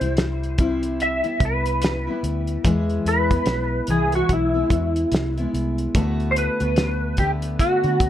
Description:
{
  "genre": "indie pop, bedroom pop",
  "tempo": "73 BPM",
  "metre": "4/4",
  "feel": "swing 60% on 16ths",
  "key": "unclear",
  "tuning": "A4 = 440 Hz",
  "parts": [
    { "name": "clean lap steel guitar", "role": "melody", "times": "0.0-8.1 s", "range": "E4 to E5", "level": "-23 LUFS", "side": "equal", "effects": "ensemble chorus, plate reverb" },
    { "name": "picked steel-string acoustic guitar", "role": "accompaniment", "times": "0.0-8.1 s", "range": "C3 to F#4", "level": "-25 LUFS", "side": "left 2 dB", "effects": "wide subtle chorus, warbly pitch drift" },
    { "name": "vintage muted fingered electric bass", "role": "bass", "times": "0.0-8.1 s", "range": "B1 to D3", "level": "-25 LUFS", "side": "equal", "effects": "none" },
    { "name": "cloth-damped thuddy drum kit", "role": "drums", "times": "0.0-8.1 s", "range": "hi-hat, kick drum, snare drum", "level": "-22 LUFS", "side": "equal", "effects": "none" }
  ],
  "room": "light reverb",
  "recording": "none",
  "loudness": "-19 LUFS",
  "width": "side -11 dB against mid",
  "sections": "0.0-8.1 A section",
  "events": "none",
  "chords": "0.0 Cmaj7; 2.6 E; 5.9 D6",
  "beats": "0.17 1.00 1.82 | 2.65 3.47 4.30 5.12 | 5.95 6.77 7.60"
}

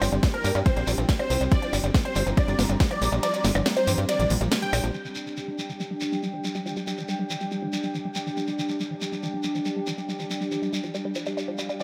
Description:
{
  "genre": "psychedelic trance",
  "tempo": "140 BPM",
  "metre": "4/4",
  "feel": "straight",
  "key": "G minor",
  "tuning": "A4 = 441 Hz",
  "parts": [
    { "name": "evolving wavetable pad", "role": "sustained chords", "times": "0.0-11.8 s", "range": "G3 to G4", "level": "-36 LUFS", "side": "equal", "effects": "chorus, built-in reverb, sidechain pumping" },
    { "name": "woody wave-folded pluck", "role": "riff", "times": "0.0-11.8 s", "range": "F3 to D4", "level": "-35 LUFS", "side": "equal", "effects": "chorus, sidechain pumping, tape echo" },
    { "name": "tight sequencer bass", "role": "bass", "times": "0.0-4.9 s", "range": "G1 to G2", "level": "-28 LUFS", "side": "equal", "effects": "none" },
    { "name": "techno drum kit", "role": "drums", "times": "0.0-4.9 s", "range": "hi-hat, percussion blips, ride cymbal, snare drum", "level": "-31 LUFS", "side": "equal", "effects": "low-pass filter on hats, low-pass filter on cymbals, low-pass filter on perc, low-pass filter on snare, low-pass filter on room" },
    { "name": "shekere", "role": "percussion", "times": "0.0-11.8 s", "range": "none", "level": "-38 LUFS", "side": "equal", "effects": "none" },
    { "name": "airy breathy pad", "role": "texture", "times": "0.0-11.8 s", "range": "D4 to Bb5", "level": "-37 LUFS", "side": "equal", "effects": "chorus, sidechain pumping" },
    { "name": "electronic kick drum", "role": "drums", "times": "0.2-2.9 s", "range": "none", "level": "-24 LUFS", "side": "equal", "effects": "none" },
    { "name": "unison lead", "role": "melody", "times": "0.3-4.8, 11.8 s", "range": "Bb4 to G5", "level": "-31 LUFS", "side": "equal", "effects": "phaser, sidechain pumping, tape echo" }
  ],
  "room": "light reverb, digital ambience",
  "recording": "none",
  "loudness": "-26 LUFS",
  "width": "mono",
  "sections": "0.0-4.9 A section; 4.9-11.8 B section",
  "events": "drop 0.0-4.9; kick drops out 3.2-4.9; filter sweep on synth arpeggio sound 4.9-11.8",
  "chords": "0.0 G5",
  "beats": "0.23 0.66 1.09 | 1.52 1.94 2.37 2.80 | 3.23 3.66 4.09 4.52 | 4.94 5.37 5.80 6.23 | 6.66 7.09 7.52 7.94 | 8.37 8.80 9.23 9.66 | 10.09 10.52 10.94 11.37 | 11.80"
}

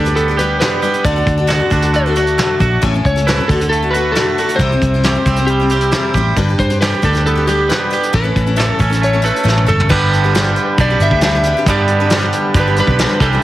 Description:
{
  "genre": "folk rock and heartland rock",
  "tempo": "135 BPM",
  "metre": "4/4",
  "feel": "straight",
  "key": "unclear",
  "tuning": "A4 = 445 Hz",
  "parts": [
    { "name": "electric slide guitar", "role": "melody", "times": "0.0-13.3 s", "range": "G4 to E5", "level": "-19 LUFS", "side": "equal", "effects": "tape echo" },
    { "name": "picked steel-string acoustic guitar", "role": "accompaniment", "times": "0.0-13.4 s", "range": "A2 to C5", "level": "-20 LUFS", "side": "left 4 dB", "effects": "none" },
    { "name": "twangy electric guitar", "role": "riff", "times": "0.0-13.4 s", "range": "G2 to A4", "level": "-18 LUFS", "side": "right 5 dB", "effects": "none" },
    { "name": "picked electric bass", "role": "bass", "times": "0.0-13.4 s", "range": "G1 to G2", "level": "-16 LUFS", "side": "equal", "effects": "none" },
    { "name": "soft brush drum kit", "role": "drums", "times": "0.1-13.3 s", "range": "crash cymbal, hi-hat, kick drum, snare drum, toms", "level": "-19 LUFS", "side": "equal", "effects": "none" }
  ],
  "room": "moderate large studio reverb, RT60 0.9 s, small room reverb",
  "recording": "heavily compressed radio sound",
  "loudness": "-12 LUFS",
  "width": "side -14 dB against mid",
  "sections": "0.0-9.9 A section; 9.9-13.4 B section",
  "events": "drum fill 9.5-9.9",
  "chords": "0.0 G; 1.0 D; 2.8 A; 3.5 D; 4.6 C; 6.4 G; 8.1 A; 9.9 G",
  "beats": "0.16 0.60 | 1.05 1.49 1.94 2.38 | 2.82 3.27 3.71 4.15 | 4.60 5.04 5.48 5.93 | 6.37 6.81 7.25 7.70 | 8.14 8.58 9.03 9.47 | 9.91 10.35 10.79 11.23 | 11.67 12.11 12.55 12.99 | 13.43"
}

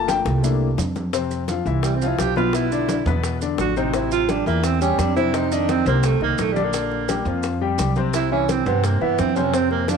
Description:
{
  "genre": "Afro-Cuban jazz",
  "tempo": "171 BPM",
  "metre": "4/4",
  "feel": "straight",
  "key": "F major",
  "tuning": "A4 = 440 Hz",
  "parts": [
    { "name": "warm concert grand piano", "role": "accompaniment", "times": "0.0-10.0 s", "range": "B2 to G5", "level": "-24 LUFS", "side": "left 10 dB", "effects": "none" },
    { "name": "upright bass", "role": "bass", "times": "0.0-10.0 s", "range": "G1 to G2", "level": "-23 LUFS", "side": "right 1 dB", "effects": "none" },
    { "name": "bongos", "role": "percussion", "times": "0.1-10.0 s", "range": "none", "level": "-31 LUFS", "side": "left 11 dB", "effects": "none" },
    { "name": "congas", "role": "percussion", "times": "0.1-10.0 s", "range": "none", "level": "-30 LUFS", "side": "right 1 dB", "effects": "none" },
    { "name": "maracas", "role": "percussion", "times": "0.1-10.0 s", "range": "none", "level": "-36 LUFS", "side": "right 13 dB", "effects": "none" },
    { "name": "breathy tenor saxophone", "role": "second line", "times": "1.8-10.0 s", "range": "G3 to G4", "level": "-22 LUFS", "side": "right 12 dB", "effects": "none" }
  ],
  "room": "moderate echo chamber reverb, RT60 2.1 s",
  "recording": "1960s-style stereo with parts hard left and right",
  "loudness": "-18 LUFS",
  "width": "side -6 dB against mid",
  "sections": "0.0-1.1 A section; 1.1-10.0 A section",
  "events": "grand piano solo 0.0-1.1; drum fill 0.1-1.1; tenor saxophone solo 1.1-10.0",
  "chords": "0.4 C13; 1.1 F5; 2.5 Bmadd11; 3.2 E5; 3.9 Am7; 5.3 F5; 6.7 Bb6; 8.1 C",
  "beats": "0.08 0.43 0.78 | 1.13 1.49 1.84 2.19 | 2.54 2.89 3.24 3.59 | 3.94 4.29 4.64 4.99 | 5.34 5.69 6.04 6.39 | 6.74 7.09 7.44 7.79 | 8.14 8.49 8.84 9.19 | 9.54 9.89"
}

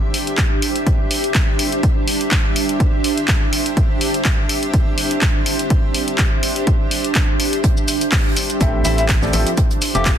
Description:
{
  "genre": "piano house",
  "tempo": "124 BPM",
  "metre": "4/4",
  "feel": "swing 55% on 16ths",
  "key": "unclear",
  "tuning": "A4 = 441 Hz",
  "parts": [
    { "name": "granular cloud pad", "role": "texture", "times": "0.0-10.2 s", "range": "D4 to E5", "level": "-21 LUFS", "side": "right 2 dB", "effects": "built-in reverb, sidechain pumping" },
    { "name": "punchy analog drum machine", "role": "drums", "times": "0.1-10.2 s", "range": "handclaps, hi-hat, shaker", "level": "-21 LUFS", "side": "left 1 dB", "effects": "none" },
    { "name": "electronic kick drum", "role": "drums", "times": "0.4-10.2 s", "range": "none", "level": "-17 LUFS", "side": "equal", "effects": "none" },
    { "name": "tight funk drum kit", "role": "drums", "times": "7.6-10.2 s", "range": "hi-hat, snare drum", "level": "-31 LUFS", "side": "right 4 dB", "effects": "none" },
    { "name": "clear grand piano", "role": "riff", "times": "8.6-10.1 s", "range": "A2 to E5", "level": "-22 LUFS", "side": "left 1 dB", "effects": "sidechain pumping, digital delay" },
    { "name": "organ-like FM bass", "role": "bass", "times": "8.6-10.2 s", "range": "F1 to A1", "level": "-20 LUFS", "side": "equal", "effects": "sidechain pumping" },
    { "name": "warm tenor saxophone", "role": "melody", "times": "8.8-10.1 s", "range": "E4 to G4", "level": "-23 LUFS", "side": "left 2 dB", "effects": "digital delay" }
  ],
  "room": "light reverb, studio reverb",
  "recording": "dense, heavily limited modern master",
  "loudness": "-15 LUFS",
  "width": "side -9 dB against mid",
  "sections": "0.0-10.2 A section",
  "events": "none",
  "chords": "0.0 D9sus4; 7.6 Am7; 9.6 Fmaj7",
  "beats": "0.38 0.87 1.35 | 1.83 2.32 2.80 3.29 | 3.77 4.25 4.74 5.22 | 5.70 6.19 6.67 7.16 | 7.64 8.12 8.61 9.09 | 9.57 10.06"
}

